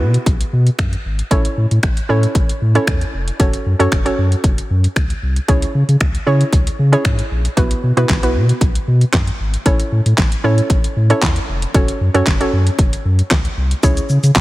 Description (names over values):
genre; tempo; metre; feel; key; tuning
dance-pop; 115 BPM; 4/4; straight; unclear; A4 = 441 Hz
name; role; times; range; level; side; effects
hollow square pluck; accompaniment; 0.0-14.3 s; B3 to C#5; -20 LUFS; right 1 dB; chorus, sidechain pumping
saturated sub bass; bass; 0.0-14.4 s; F1 to C#3; -15 LUFS; equal; sidechain pumping
pop drum kit; drums; 0.1-14.4 s; finger snaps, handclaps, hi-hat, kick drum, shaker, snare drum; -17 LUFS; equal; none
room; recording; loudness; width
light reverb; heavily compressed radio sound; -13 LUFS; side -18 dB against mid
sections
0.0-14.4 A section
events
none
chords
0.0 Bsus4; 1.3 A; 3.4 F#m; 5.5 C#m; 7.6 Bsus4; 9.7 A; 11.7 F#m; 13.8 C#m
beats
0.27 0.79 | 1.31 1.83 2.35 2.88 | 3.40 3.92 4.44 4.96 | 5.48 6.01 6.53 7.05 | 7.57 8.09 8.62 9.14 | 9.66 10.18 10.70 11.22 | 11.74 12.27 12.79 13.31 | 13.83 14.35